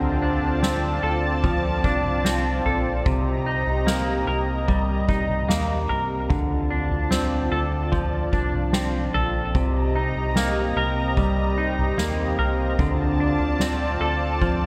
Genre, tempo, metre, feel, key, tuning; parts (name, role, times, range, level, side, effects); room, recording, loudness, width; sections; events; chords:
dream pop; 74 BPM; 4/4; straight; A4 = 439 Hz
lush unison pad; sustained chords; 0.0-14.7 s; C4 to Bb5; -29 LUFS; equal; chorus
semi-hollow electric guitar; arpeggios; 0.0-14.7 s; C3 to Bb4; -28 LUFS; equal; lush chorus, delay
round analog bass; bass; 0.0-14.7 s; Bb1 to Eb2; -29 LUFS; equal
soft-mallet drum kit; drums; 0.6-14.6 s; kick drum, snare drum, toms; -29 LUFS; equal
moderate plate reverb, RT60 2.8 s; bright 1980s-style digital production; -23 LUFS; mono
0.0-14.7 A section
0.0 Dm7; 3.1 Cm7; 6.3 Dm7; 9.5 Cm7; 12.8 Dm7